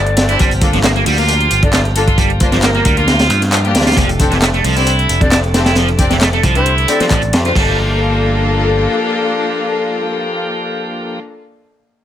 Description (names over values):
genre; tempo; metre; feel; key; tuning
breakbeat, breaks; 134 BPM; 4/4; swing 54% on 16ths; G dorian; A4 = 440 Hz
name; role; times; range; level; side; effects
breathy mellow silver concert flute; melody; 0.0-7.5 s; Bb4 to D5; -21 LUFS; equal; telephone sound, digital delay
bright tonewheel organ; sustained chords; 0.0-11.2 s; D3 to G4; -24 LUFS; equal; overdrive, slow rotary speaker, vintage 12-bit sampler grit, sidechain pumping
picked electric bass; bass; 0.0-8.9 s; F1 to G2; -16 LUFS; equal; none
garage drum kit; drums; 0.1-7.5 s; handclaps, hi-hat; -21 LUFS; left 1 dB; none
clear studio string section; stabs; 0.2-11.2 s; Bb3 to D5; -19 LUFS; left 3 dB; vintage 12-bit sampler grit, digital delay
crunchy breakbeat drum kit; drums; 0.2-7.7 s; crash cymbal, hi-hat, kick drum, snare drum; -15 LUFS; equal; none
distorted electric guitar; riff; 0.3-7.8 s; E3 to F4; -17 LUFS; right 3 dB; distortion, overdrive, digital delay
room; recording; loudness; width
light reverb; none; -11 LUFS; side -10 dB against mid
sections
0.0-7.6 A section; 7.6-11.1 B section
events
drop 0.0-7.6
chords
0.4 Gm7; 4.0 F6; 7.6 Gm7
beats
| 0.39 0.84 1.29 1.74 | 2.18 2.63 3.08 3.53 | 3.97 4.42 4.87 5.32 | 5.76 6.21 6.66 7.11 | 7.55 8.00 8.45 8.90 | 9.35 9.79 10.24 10.69